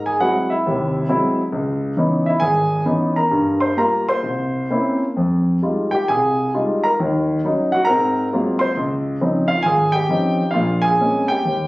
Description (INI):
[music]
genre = solo jazz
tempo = 134 BPM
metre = 4/4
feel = swing 66% on 8ths, rubato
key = unclear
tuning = A4 = 440 Hz
[part]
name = warm concert grand piano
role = solo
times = 0.0-11.7 s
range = Ab1 to C6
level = -16 LUFS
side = equal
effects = none
[sound]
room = light reverb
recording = recorded on a phone in the room, club reverb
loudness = -16 LUFS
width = side -20 dB against mid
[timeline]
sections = 0.0-11.7 A section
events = none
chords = 0.0 Ab7b13; 1.5 Dbm9; 3.3 Gmadd11; 4.2 C7b9; 5.2 Fm9; 7.0 Ebm7; 7.9 Ab13; 8.8 Dbmaj9; 10.5 Bbm9